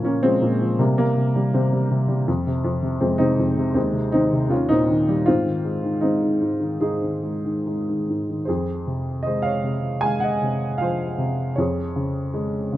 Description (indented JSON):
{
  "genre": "classical, lyrical solo piano",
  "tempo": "70-82 BPM",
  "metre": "4/4",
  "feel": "rubato",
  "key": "Ab major, F phrygian from 8.5 s",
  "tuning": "A4 = 440 Hz",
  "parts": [
    { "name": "warm upright piano", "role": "solo", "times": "0.0-12.8 s", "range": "Eb2 to Ab5", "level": "-19 LUFS", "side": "equal", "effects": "none" }
  ],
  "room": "light reverb",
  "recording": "close, detailed microphones",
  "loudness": "-19 LUFS",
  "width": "side -14 dB against mid",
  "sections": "0.0-8.5 A section; 8.5-12.8 B section",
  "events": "none",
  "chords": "0.0 Bbm7; 0.8 C5; 2.3 Fm; 3.8 Ab/Eb; 4.5 Eb7; 5.3 Ab; 8.5 Fm; 11.6 Db/F",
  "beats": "0.03 0.79 1.54 | 2.28 3.01 3.75 4.51 | 5.27 6.02 6.82 7.66 | 8.48 9.26 10.04 10.81 | 11.59 12.36"
}